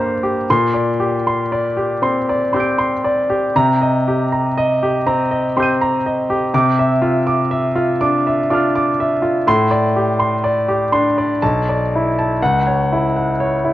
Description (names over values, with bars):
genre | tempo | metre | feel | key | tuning
classical, impressionist solo piano | 60 BPM | 3/4 | uneven beats, rubato | unclear | A4 = 438 Hz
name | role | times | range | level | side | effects
clear concert grand piano | solo | 0.0-13.7 s | B1 to Eb7 | -14 LUFS | equal | none
room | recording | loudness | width
moderate large studio reverb, RT60 1.2 s | worn, warbling old tape, cassette tape, warbly pitch drift | -14 LUFS | side -14 dB against mid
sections
0.0-13.7 A section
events
none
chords
0.5 Bb69; 3.5 Cm7; 6.5 Dm9/C; 9.5 Am7; 11.4 Bm7; 12.4 C#m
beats
| 0.47 1.50 2.51 | 3.53 4.57 5.56 | 6.53 7.50 8.49 | 9.46 10.42 11.41 | 12.40 13.37